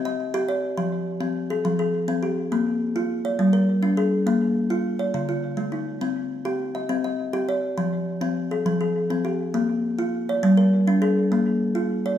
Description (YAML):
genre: southern african traditional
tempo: 137 BPM (dotted quarters)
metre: 12/8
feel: straight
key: unclear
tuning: A4 = 437 Hz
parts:
  - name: kalimba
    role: solo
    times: 0.0-12.2 s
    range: D3-29c to Eb5+43c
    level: -21 LUFS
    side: equal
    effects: tape echo
room: moderate recital hall reverb, RT60 1.4 s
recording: none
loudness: -21 LUFS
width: side -10 dB against mid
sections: 0.0-12.2 A section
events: none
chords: 0.0 Cm; 0.8 F; 2.5 Bb; 3.4 Gm; 4.3 Bb; 5.1 Dm; 6.0 Cm; 7.8 F; 9.5 Bb; 10.4 Gm; 11.3 Bb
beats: 0.34 | 0.77 1.21 1.65 2.08 | 2.52 2.95 3.39 3.83 | 4.26 4.70 5.14 5.58 | 6.02 6.46 6.90 7.34 | 7.78 8.22 8.66 9.10 | 9.54 9.98 10.42 10.87 | 11.31 11.75